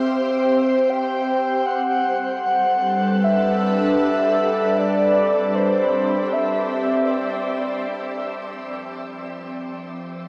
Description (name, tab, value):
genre	ambient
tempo	free time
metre	none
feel	none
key	unclear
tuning	A4 = 440 Hz
part	breathy flute-like synth lead	melody	0.0-7.5 s	C5 to G5	-24 LUFS	equal	analog chorus, tape echo
part	ethereal airy pad	sustained chords	0.0-10.3 s	F3 to E5	-24 LUFS	equal	ensemble chorus, built-in reverb, phaser
room	wet shimmer reverb, RT60 8.8 s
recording	worn, warbling old tape, cassette tape, warbly pitch drift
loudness	-20 LUFS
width	mono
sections	0.0-7.9 A section; 7.9-10.3 B section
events	none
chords	0.0 C5; 1.7 Gmaj7; 4.8 C; 7.9 F5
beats	free time